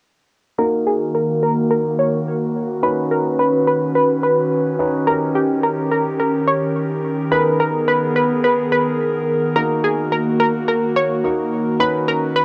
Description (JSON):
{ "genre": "pop", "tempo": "107 BPM", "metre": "4/4", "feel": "straight", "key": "Eb minor", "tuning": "A4 = 438 Hz", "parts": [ { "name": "analog pluck", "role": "melody", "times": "0.6-12.4 s", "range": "G4 to Db5", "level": "-21 LUFS", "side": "equal", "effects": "chorus, low-pass filter, cassette tape" }, { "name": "warm concert grand piano", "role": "accompaniment", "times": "0.6-12.4 s", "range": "Bb3 to B4", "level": "-28 LUFS", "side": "equal", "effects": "low-pass filter, cassette tape" }, { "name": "airy breathy pad", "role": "sustained chords", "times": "0.9-12.4 s", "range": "Eb3 to B4", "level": "-22 LUFS", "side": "equal", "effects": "chorus, low-pass filter, cassette tape" } ], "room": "moderate booth ambience, RT60 0.2 s", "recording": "home recording on cassette", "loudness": "-18 LUFS", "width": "mono", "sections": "0.6-12.4 A section", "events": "filter sweep 0.6-12.4", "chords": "0.6 Ebm; 2.8 Badd9; 5.1 Eb7; 7.3 Abmadd9; 9.6 Ebm; 11.8 Badd9", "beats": "| 0.59 1.15 1.71 2.27 | 2.83 3.39 3.95 4.51 | 5.07 5.63 6.20 6.76 | 7.32 7.88 8.44 9.00 | 9.56 10.12 10.68 11.24 | 11.80 12.36" }